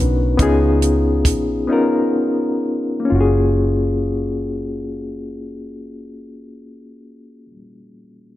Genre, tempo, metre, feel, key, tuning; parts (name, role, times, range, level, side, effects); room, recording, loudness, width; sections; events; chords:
slow six-eight R&B; 41-48 BPM (dotted quarters); 6/8; straight; F# major; A4 = 440 Hz
bright reed electric piano; accompaniment; 0.0-8.4 s; A#3 to B4; -19 LUFS; left 2 dB; fast tremolo
vintage muted fingered electric bass; bass; 0.0-7.5 s; F#1 to C#2; -20 LUFS; equal
compact cocktail drum kit; drums; 0.4-1.5 s; hi-hat, kick drum; -18 LUFS; equal
light reverb; -16 LUFS; side -14 dB against mid
0.0-3.1 A section; 3.1-6.0 B section
slowing down 0.0-3.1; break 1.7-3.1
0.4 C#9; 3.1 F#maj9